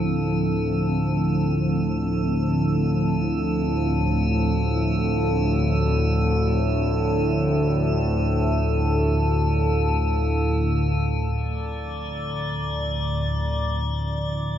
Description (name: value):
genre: ambient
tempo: free time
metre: none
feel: none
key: D minor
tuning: A4 = 441 Hz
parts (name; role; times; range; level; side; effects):
- sweeping resonant pad; sustained chords; 0.0-14.6 s; F3 to E4; -28 LUFS; right 1 dB; chorus
- analog drone; drone; 0.0-14.6 s; D2 to A2; -22 LUFS; equal; chorus
- metallic inharmonic drone; texture; 0.0-14.6 s; A4 to D5; -28 LUFS; left 1 dB; chorus, built-in reverb
room: wet cathedral reverb, RT60 5.0 s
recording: nothing above 7.5 kHz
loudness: -20 LUFS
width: side -10 dB against mid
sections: 0.0-11.3 A section; 11.3-14.6 B section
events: fade-in on synth drone 0.0-11.3; fade-out on analog synth pad 0.0-11.3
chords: 0.0 Dmadd9